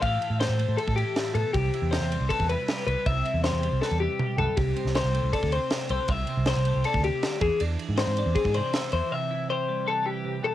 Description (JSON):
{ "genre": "math rock and midwest emo", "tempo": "158 BPM", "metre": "4/4", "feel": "straight", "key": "C major", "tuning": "A4 = 440 Hz", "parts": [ { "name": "twelve-string electric guitar", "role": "accompaniment", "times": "0.0-10.5 s", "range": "A2 to E5", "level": "-33 LUFS", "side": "right 8 dB", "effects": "analog chorus" }, { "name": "twelve-string electric guitar", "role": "arpeggios", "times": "0.0-10.5 s", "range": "G4 to F5", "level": "-27 LUFS", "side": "left 5 dB", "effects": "none" }, { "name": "picked electric bass", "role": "bass", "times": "0.0-9.0 s", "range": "C2 to A2", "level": "-27 LUFS", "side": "right 1 dB", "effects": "none" }, { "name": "crisp fusion drum kit", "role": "drums", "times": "0.0-9.0 s", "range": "kick drum, ride cymbal, snare drum, toms", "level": "-31 LUFS", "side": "right 1 dB", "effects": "cassette tape" } ], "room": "little or no reverb", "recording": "home recording on cassette", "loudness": "-24 LUFS", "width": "side -13 dB against mid", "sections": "0.0-10.5 A section", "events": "drum fill 3.8-4.6; break 9.1-10.5", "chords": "0.0 Fmaj9/A; 1.5 Cmaj7; 4.6 Am7/C; 7.4 Eaug7; 9.1 Cmaj7" }